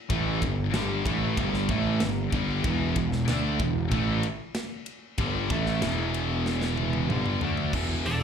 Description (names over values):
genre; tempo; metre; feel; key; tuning
heavy metal; 94 BPM; 4/4; straight; E minor; A4 = 440 Hz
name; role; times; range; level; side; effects
distorted electric guitar; riff; 0.1-7.7 s; E2 to D4; -33 LUFS; equal; distortion
scooped high-gain guitar; riff; 0.1-8.2 s; E2 to D4; -31 LUFS; left 13 dB; distortion
sludgy distorted guitar; riff; 0.1-8.2 s; E2 to D4; -31 LUFS; right 11 dB; overdrive, slapback echo
fuzz picked electric bass; bass; 0.1-8.2 s; E1 to D2; -29 LUFS; equal; overdrive
tight metal drum kit; drums; 0.1-8.2 s; crash cymbal, hi-hat, kick drum, ride cymbal, snare drum, toms; -32 LUFS; equal; none
high-gain lead guitar; melody; 8.1-8.2 s; A4 to D5; -28 LUFS; left 1 dB; distortion
room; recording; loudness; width
small room ambience; live gig heard through the venue's PA, club reverb; -24 LUFS; side -7 dB against mid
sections
0.0-7.7 A section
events
drum fill 6.5-7.7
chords
0.0 G5; 2.6 Em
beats
| 0.10 0.74 1.38 2.01 | 2.65 3.29 3.92 4.56 | 5.19 5.83 6.46 7.10 | 7.74